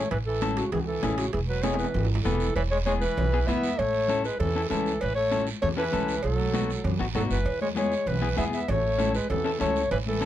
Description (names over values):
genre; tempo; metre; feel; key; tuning
latin, cumbia; 196 BPM; 4/4; straight; E major; A4 = 440 Hz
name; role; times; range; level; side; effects
dark clarinet; melody; 0.0-10.3 s; F#4 to E5; -28 LUFS; left 1 dB; none
bright trombone; second line; 0.0-10.3 s; C#3 to B3; -34 LUFS; right 5 dB; none
electric guitar at the edge of break-up; accompaniment; 0.0-10.3 s; B3 to B4; -30 LUFS; left 6 dB; none
upright bass; bass; 0.0-10.3 s; E1 to F#2; -29 LUFS; right 1 dB; none
guiro; percussion; 0.1-10.3 s; none; -40 LUFS; right 8 dB; none
timbales and cowbell; percussion; 0.1-10.1 s; none; -36 LUFS; right 7 dB; none
congas; percussion; 0.4-10.3 s; none; -33 LUFS; left 2 dB; none
room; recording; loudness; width
light reverb; none; -24 LUFS; side -12 dB against mid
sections
0.0-2.6 A section; 2.6-10.3 B section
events
drum fill 1.6-2.6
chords
0.0 A; 1.3 E; 3.8 A; 6.2 B7; 7.5 E; 8.7 A